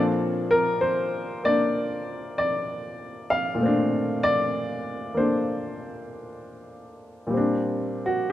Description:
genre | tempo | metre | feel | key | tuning
solo jazz | 64 BPM | 4/4 | swing 68% on 8ths | Bb major | A4 = 441 Hz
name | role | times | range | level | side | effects
warm upright piano | solo | 0.0-8.3 s | Bb2 to F5 | -23 LUFS | left 1 dB | none
room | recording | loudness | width
light reverb | none | -22 LUFS | side -13 dB against mid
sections
0.0-7.3 A section; 7.3-8.3 B section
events
upright piano solo 7.3-8.3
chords
0.0 Bbmaj9; 7.3 Bb69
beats
0.81 1.74 2.67 | 3.60 4.53 5.46 6.39 | 7.32 8.24

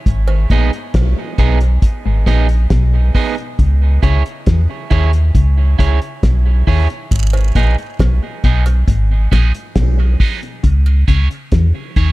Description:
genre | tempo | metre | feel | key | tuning
dub reggae | 68 BPM | 4/4 | straight | G# minor | A4 = 439 Hz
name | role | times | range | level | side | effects
mellow electric guitar | riff | 0.1-12.1 s | G#2 to E3 | -23 LUFS | left 4 dB | dub echo
warm sub bass | bass | 0.1-12.1 s | G#1 to E2 | -13 LUFS | equal | none
cloth-damped thuddy drum kit | drums | 0.1-12.1 s | hi-hat, kick drum, snare drum | -15 LUFS | equal | none
cowbell and jawbone-type rattle | percussion | 0.3-0.5, 7.1-11.1 s | none | -33 LUFS | right 6 dB | high-pass filter on perc, dub echo
electric guitar at the edge of break-up | accompaniment | 0.5-12.1 s | B3 to C#5 | -23 LUFS | right 8 dB | high-pass filter, dub echo
room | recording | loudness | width
studio reverb | echo-heavy mix | -12 LUFS | side -19 dB against mid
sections
0.0-12.1 A section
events
break 0.1-7.1; filter sweep 3.6-12.1; part muted 10.6-12.1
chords
0.1 G#m; 3.6 C#m; 7.1 G#m; 10.6 C#m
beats
| 0.06 0.94 1.82 2.71 | 3.59 4.47 5.35 6.23 | 7.11 8.00 8.88 9.76 | 10.64 11.52

